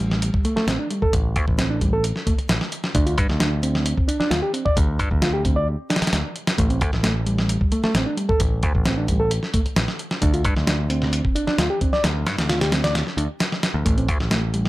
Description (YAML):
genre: breakbeat, breaks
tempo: 132 BPM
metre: 4/4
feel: straight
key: A minor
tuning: A4 = 444 Hz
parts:
  - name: mellow reed electric piano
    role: riff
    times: 0.0-14.7 s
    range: G3 to D5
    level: -24 LUFS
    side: right 1 dB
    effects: tube saturation, tape echo
  - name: picked electric bass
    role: bass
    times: 0.0-14.7 s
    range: A1 to G2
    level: -23 LUFS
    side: equal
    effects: none
  - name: dusty soul sampler-style drum kit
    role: drums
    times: 0.1-14.7 s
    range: hi-hat, kick drum, snare drum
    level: -22 LUFS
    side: equal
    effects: none
room: little or no reverb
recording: none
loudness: -19 LUFS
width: side -18 dB against mid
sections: 0.0-14.7 A section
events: break 12.9-13.9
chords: 0.0 A7(no3); 2.9 D7(no3); 6.6 A7(no3); 10.2 D7(no3); 13.9 A7(no3)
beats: 0.22 0.68 | 1.13 1.58 2.04 2.49 | 2.95 3.40 3.86 4.31 | 4.76 5.22 5.67 6.13 | 6.58 7.04 7.49 7.95 | 8.40 8.86 9.31 9.77 | 10.22 10.68 11.13 11.58 | 12.04 12.49 12.95 13.40 | 13.86 14.31